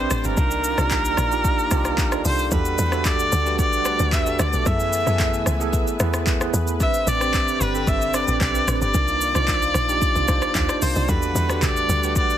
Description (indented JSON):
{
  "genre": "amapiano",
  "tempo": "112 BPM",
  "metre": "4/4",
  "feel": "straight",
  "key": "unclear",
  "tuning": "A4 = 440 Hz",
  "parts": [
    { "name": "clear erhu", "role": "melody", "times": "0.0-12.4 s", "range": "A#4 to E5", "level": "-23 LUFS", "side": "equal", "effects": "digital delay" },
    { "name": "bell-like tine electric piano", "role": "accompaniment", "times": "0.0-12.4 s", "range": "B3 to D5", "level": "-27 LUFS", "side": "right 4 dB", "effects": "medium stereo tremolo" },
    { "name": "lush unison pad", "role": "sustained chords", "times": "0.0-12.4 s", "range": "D3 to G#5", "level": "-31 LUFS", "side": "equal", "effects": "chorus" },
    { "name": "tight log drum bass", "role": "bass", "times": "0.0-12.4 s", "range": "G1 to F#2", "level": "-24 LUFS", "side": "equal", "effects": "none" },
    { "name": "deep house drum kit", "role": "drums", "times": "0.1-12.4 s", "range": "handclaps, hi-hat, kick drum, rim click, shaker", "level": "-24 LUFS", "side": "equal", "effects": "none" },
    { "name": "congas", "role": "percussion", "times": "11.3-12.0 s", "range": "none", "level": "-32 LUFS", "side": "left 1 dB", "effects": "none" }
  ],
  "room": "digital ambience",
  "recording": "dense, heavily limited modern master",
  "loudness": "-18 LUFS",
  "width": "side -11 dB against mid",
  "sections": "0.0-12.4 A section",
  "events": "none",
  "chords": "0.4 Cm11; 2.5 Em11; 4.7 F#m11; 6.8 Am11; 8.9 Cm11; 11.1 Em11"
}